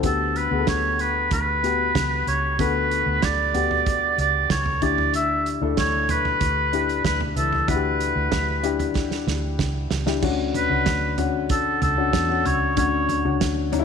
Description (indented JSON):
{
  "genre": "piano-driven pop",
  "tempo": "94 BPM",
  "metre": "4/4",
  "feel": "straight",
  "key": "D major",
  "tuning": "A4 = 440 Hz",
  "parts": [
    { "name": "warm upright piano", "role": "accompaniment", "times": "0.0-13.8 s", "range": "D3 to A4", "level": "-26 LUFS", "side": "left 10 dB", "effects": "none" },
    { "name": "vintage muted fingered electric bass", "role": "bass", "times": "0.0-13.8 s", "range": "C#2 to E2", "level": "-27 LUFS", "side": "right 1 dB", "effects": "none" },
    { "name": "loose indie drum kit", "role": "drums", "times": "0.0-13.8 s", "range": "crash cymbal, hi-hat, kick drum, snare drum, toms", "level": "-27 LUFS", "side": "right 5 dB", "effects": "none" },
    { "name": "mellow oboe", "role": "melody", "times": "0.1-13.4 s", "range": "A4 to E5", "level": "-23 LUFS", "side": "right 2 dB", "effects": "slapback echo" }
  ],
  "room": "moderate echo chamber reverb, RT60 2.1 s",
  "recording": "1960s-style stereo",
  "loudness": "-20 LUFS",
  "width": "side -6 dB against mid",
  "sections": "0.0-10.2 A section; 10.2-13.8 B section",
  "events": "drum fill 9.0-10.2",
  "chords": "0.0 Gmaj7; 4.8 Em7; 10.2 Dmaj7",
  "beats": "| 0.04 0.68 1.31 1.95 | 2.59 3.23 3.86 4.50 | 5.14 5.77 6.41 7.05 | 7.68 8.32 8.96 9.59 | 10.23 10.87 11.50 12.14 | 12.77 13.41"
}